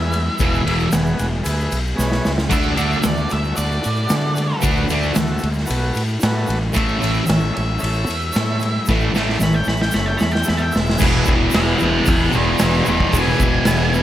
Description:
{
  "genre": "garage rock duo or trio",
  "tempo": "113 BPM",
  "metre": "4/4",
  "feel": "straight",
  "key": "E major from 11.0 s",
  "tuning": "A4 = 440 Hz",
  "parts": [
    { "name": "octave-fuzz lead guitar", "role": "melody", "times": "0.0-14.0 s", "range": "G#4 to B5", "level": "-24 LUFS", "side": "equal", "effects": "distortion" },
    { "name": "combo organ", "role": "sustained chords", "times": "0.0-14.0 s", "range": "E4 to F#5", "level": "-28 LUFS", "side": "equal", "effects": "none" },
    { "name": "fuzz fingered electric bass", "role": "bass", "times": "0.0-14.0 s", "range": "E1 to D3", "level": "-21 LUFS", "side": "equal", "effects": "overdrive" },
    { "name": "raw garage drum kit", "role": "drums", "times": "0.1-13.8 s", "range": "crash cymbal, hi-hat, kick drum, ride cymbal, snare drum", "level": "-21 LUFS", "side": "equal", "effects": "none" },
    { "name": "egg shaker", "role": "percussion", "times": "0.1-14.0 s", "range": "none", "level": "-34 LUFS", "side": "right 3 dB", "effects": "none" },
    { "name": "thick fuzz guitar", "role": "riff", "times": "0.4-14.0 s", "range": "E2 to D4", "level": "-18 LUFS", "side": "equal", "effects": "distortion" }
  ],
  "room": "light reverb",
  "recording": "none",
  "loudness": "-16 LUFS",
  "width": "side -12 dB against mid",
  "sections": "0.0-11.0 A section; 11.0-14.0 B section",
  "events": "drum fill 2.0-2.5, 8.9-11.0",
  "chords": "0.0 E; 2.5 D; 6.7 A; 11.0 E",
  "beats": "| 0.38 0.91 1.44 1.97 | 2.50 3.03 3.56 4.09 | 4.62 5.15 5.68 6.21 | 6.74 7.28 7.81 8.34 | 8.87 9.41 9.94 10.47 | 11.00 11.54 12.07 12.60 | 13.13 13.66"
}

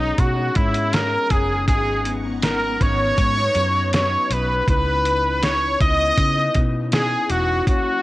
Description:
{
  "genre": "indie pop, bedroom pop",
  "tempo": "80 BPM",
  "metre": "4/4",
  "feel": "straight",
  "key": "unclear",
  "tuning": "A4 = 441 Hz",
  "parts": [
    { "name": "bright trumpet", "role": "melody", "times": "0.0-8.0 s", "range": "D#4 to D#5", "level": "-20 LUFS", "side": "equal", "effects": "ensemble chorus, cassette tape, analog delay" },
    { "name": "electric guitar through a small old amp", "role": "accompaniment", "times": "0.0-8.0 s", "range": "F#2 to D#4", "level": "-28 LUFS", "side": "left 5 dB", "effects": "lush chorus, vibrato effect, cassette tape" },
    { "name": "vintage muted fingered electric bass", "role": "bass", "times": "0.0-7.6 s", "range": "E1 to C#3", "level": "-24 LUFS", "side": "equal", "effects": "none" },
    { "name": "dusty soul sampler-style drum kit", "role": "drums", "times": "0.2-7.8 s", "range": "hi-hat, kick drum, snare drum", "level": "-21 LUFS", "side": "equal", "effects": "cassette tape" },
    { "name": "string machine, violins", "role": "sustained chords", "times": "1.7-4.6 s", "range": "B3 to C#6", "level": "-32 LUFS", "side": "equal", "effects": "ensemble chorus, cassette tape" }
  ],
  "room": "light reverb",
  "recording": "home recording on cassette",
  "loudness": "-17 LUFS",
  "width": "side -17 dB against mid",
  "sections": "0.0-8.0 A section",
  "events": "none",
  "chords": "0.0 B69; 1.7 G#m11; 4.7 C#m9",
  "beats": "0.18 0.93 | 1.68 2.43 3.18 3.93 | 4.68 5.43 6.17 6.92 | 7.67"
}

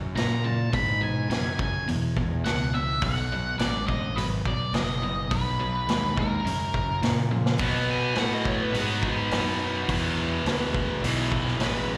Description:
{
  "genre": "blues rock power trio and southern rock",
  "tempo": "105 BPM",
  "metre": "4/4",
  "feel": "straight",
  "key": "B major",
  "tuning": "A4 = 440 Hz",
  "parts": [
    { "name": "cranked stack guitar", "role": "riff", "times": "0.0-12.0 s", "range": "E2 to B3", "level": "-31 LUFS", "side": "equal", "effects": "overdrive, slapback echo" },
    { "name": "fuzz fingered electric bass", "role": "bass", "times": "0.0-12.0 s", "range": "F#1 to B2", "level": "-31 LUFS", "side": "equal", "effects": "overdrive" },
    { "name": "octave-fuzz lead guitar", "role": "melody", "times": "0.2-7.0 s", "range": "A#4 to B5", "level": "-32 LUFS", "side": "equal", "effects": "distortion, slapback echo, analog delay" },
    { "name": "vintage drum kit", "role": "drums", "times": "0.2-11.7 s", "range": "hi-hat, kick drum, snare drum, toms", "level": "-32 LUFS", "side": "equal", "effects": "none" },
    { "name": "smooth overdriven lead guitar", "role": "second line", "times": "7.9-12.0 s", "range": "D#4 to G#5", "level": "-34 LUFS", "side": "equal", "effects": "none" }
  ],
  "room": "little or no reverb",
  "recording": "live gig heard through the venue's PA, recital hall reverb",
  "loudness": "-26 LUFS",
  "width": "mono",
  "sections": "0.0-7.6 A section; 7.6-12.0 B section",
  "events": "drum fill 7.3; lead electric guitar solo 7.6-12.0",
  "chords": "0.0 F#; 0.7 E; 3.0 B7; 6.5 F#; 7.6 B7; 9.9 E5",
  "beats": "0.16 | 0.73 1.31 1.88 2.45 | 3.02 3.60 4.17 4.74 | 5.31 5.89 6.46 7.03 | 7.60 8.18 8.75 9.32 | 9.89 10.46 11.03 11.61"
}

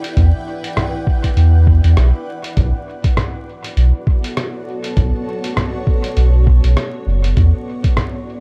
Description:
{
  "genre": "ambient dub",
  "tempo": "100 BPM",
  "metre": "4/4",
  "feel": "swing 57% on 16ths",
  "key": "B minor",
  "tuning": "A4 = 438 Hz",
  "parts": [
    { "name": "granular cloud pad", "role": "sustained chords", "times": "0.0-8.4 s", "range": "B3 to G5", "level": "-28 LUFS", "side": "equal", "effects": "built-in reverb" },
    { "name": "lo-fi sampler-style drum kit", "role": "drums", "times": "0.0-8.1 s", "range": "congas, hi-hat, rim click", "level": "-26 LUFS", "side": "equal", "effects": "dub echo" },
    { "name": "warm sub bass", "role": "bass", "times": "0.2-7.5 s", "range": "F#1 to E2", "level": "-13 LUFS", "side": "equal", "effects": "none" },
    { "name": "electronic kick drum", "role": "drums", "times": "0.2-7.9 s", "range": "none", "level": "-18 LUFS", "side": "equal", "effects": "none" }
  ],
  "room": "little or no reverb",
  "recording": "dark, warm production, vinyl crackle",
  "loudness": "-16 LUFS",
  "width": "mono",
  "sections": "0.0-8.4 A section",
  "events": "none",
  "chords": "0.0 Em7; 2.6 Bm7; 7.4 E7(no3)",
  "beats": "| 0.17 0.77 1.37 1.97 | 2.57 3.17 3.77 4.37 | 4.97 5.57 6.17 6.77 | 7.37 7.97"
}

